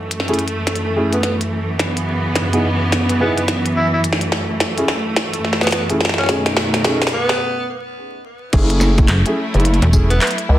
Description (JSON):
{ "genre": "glitch hop", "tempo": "107 BPM", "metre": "4/4", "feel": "swing 61% on 16ths", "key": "F# dorian", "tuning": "A4 = 440 Hz", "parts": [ { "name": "clear studio string section", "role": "sustained chords", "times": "0.0-10.6 s", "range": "F#2 to E4", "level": "-20 LUFS", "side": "equal", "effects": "sidechain pumping" }, { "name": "glitchy drum kit", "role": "drums", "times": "0.1-10.5 s", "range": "crash cymbal, handclaps, hi-hat, snare drum, tambourine", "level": "-20 LUFS", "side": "equal", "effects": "none" }, { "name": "dark grand piano", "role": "stabs", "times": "0.3-10.1 s", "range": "A3 to G#4", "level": "-22 LUFS", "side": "equal", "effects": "sidechain pumping, low-pass filter, digital delay" }, { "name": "raspy tenor saxophone", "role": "melody", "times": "1.1-10.3 s", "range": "B3 to E4", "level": "-22 LUFS", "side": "equal", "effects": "low-pass filter, digital delay" }, { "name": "gritty driven synth bass", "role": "bass", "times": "8.5-10.6 s", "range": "F#1 to C#2", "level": "-14 LUFS", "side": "equal", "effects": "overdrive" }, { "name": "electronic kick drum", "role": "drums", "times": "8.5-10.1 s", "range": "none", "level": "-14 LUFS", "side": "equal", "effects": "none" }, { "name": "slap-like FM bass", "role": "bass", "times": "9.1-10.2 s", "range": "E1 to F#1", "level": "-14 LUFS", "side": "equal", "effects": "none" } ], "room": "moderate studio reverb, RT60 0.6 s", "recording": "dense, heavily limited modern master, vinyl crackle", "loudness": "-15 LUFS", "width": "side -13 dB against mid", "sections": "0.0-8.5 A section; 8.5-10.6 B section", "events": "build-up 0.0-8.5; drum fill 0.0-7.4; filter sweep on tenor saxophone 0.0-8.5; break 7.4-8.5; drop 8.5-10.6", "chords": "0.0 F#m7; 1.8 C#m7/F#; 4.0 F#m7; 6.3 B7/F#; 8.5 F#m7" }